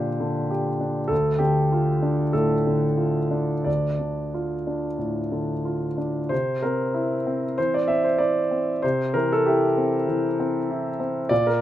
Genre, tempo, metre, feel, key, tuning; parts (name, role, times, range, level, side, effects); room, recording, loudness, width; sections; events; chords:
neoclassical minimalist piano; 86-99 BPM; 4/4; rubato; A4 = 441 Hz
warm concert grand piano; solo; 0.0-11.6 s; D2 to E5; -21 LUFS; equal
moderate small room reverb, RT60 0.5 s; rough home demo mix; -21 LUFS; side -12 dB against mid
0.0-6.3 A section; 6.3-11.6 A section
0.0 Gm/Bb; 1.1 Dm; 6.3 C